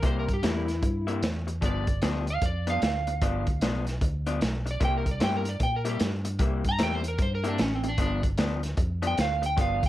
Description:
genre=electric blues shuffle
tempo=151 BPM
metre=4/4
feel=swing 64% on 8ths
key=unclear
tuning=A4 = 440 Hz
part: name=electric slide guitar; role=melody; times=0.0-9.9 s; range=C4 to Bb5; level=-30 LUFS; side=right 2 dB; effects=none
part: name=electric guitar through a small old amp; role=riff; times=0.0-9.9 s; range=G2 to E4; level=-33 LUFS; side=left 4 dB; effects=none
part: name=vintage muted fingered electric bass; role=bass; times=0.0-9.9 s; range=G1 to Bb2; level=-30 LUFS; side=equal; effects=none
part: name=crunchy breakbeat drum kit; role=drums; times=0.0-9.9 s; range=hi-hat, kick drum, snare drum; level=-28 LUFS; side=equal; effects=none
room=little or no reverb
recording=none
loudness=-25 LUFS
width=side -14 dB against mid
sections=0.0-9.9 A section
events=electric slide guitar solo 0.0-9.9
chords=0.0 C7; 1.6 G7; 4.8 C7; 8.0 G7

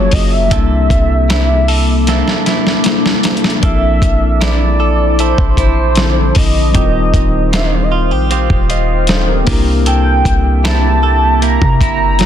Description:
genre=contemporary R&B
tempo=77 BPM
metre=4/4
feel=straight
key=unclear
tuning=A4 = 439 Hz
part: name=warm velvety synth lead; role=melody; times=0.0-12.3 s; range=C5 to Bb5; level=-18 LUFS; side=right 1 dB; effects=chorus
part: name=mellow tine electric piano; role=accompaniment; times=0.0-12.3 s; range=D3 to Eb5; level=-20 LUFS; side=left 6 dB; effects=medium stereo tremolo
part: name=deep dark ambient pad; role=sustained chords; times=0.0-12.3 s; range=Bb3 to Eb6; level=-20 LUFS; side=left 1 dB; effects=chorus, built-in reverb, sidechain pumping
part: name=direct-recorded clean electric guitar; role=arpeggios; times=0.0-12.3 s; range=C3 to A4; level=-21 LUFS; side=right 8 dB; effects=none
part: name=warm 808-style bass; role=bass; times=0.0-12.3 s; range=Eb1 to C3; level=-14 LUFS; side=equal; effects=none
part: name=dusty soul sampler-style drum kit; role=drums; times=0.1-12.3 s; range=hi-hat, kick drum, snare drum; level=-15 LUFS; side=equal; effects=none
room=little or no reverb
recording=dense, heavily limited modern master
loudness=-10 LUFS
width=side -10 dB against mid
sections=0.0-3.6 A section; 3.6-12.3 A section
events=drum fill 2.1-3.6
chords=0.0 Gbmaj9; 0.5 C13; 3.6 Bbmaj9#11; 6.7 Eb69; 9.5 C13

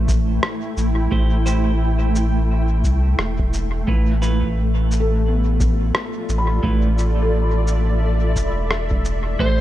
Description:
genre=ambient dub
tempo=87 BPM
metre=4/4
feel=swing 59% on 16ths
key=unclear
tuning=A4 = 440 Hz
part: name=granular cloud pad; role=sustained chords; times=0.0-9.6 s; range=A3 to G5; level=-25 LUFS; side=equal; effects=built-in reverb
part: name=felt-muted upright piano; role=arpeggios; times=0.0-9.6 s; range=B3 to B5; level=-29 LUFS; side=left 3 dB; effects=dub echo
part: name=warm sub bass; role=bass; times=0.0-9.6 s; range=E1 to C2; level=-18 LUFS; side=equal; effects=none
part: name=electronic cabasa and rim click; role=drums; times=0.1-9.2 s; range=none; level=-27 LUFS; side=equal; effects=studio reverb, dub echo
part: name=electronic kick drum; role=drums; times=0.1-9.6 s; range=none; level=-23 LUFS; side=equal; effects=studio reverb
part: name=clean electric guitar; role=stabs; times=1.1-9.6 s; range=A3 to C5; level=-28 LUFS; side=right 5 dB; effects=spring reverb, dub echo
part: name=overdriven slide guitar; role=melody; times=9.4-9.6 s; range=C5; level=-21 LUFS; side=right 1 dB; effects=none
room=digital ambience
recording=none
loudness=-17 LUFS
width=side -14 dB against mid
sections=0.0-9.6 A section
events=none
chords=0.0 Am7; 3.9 G13/A

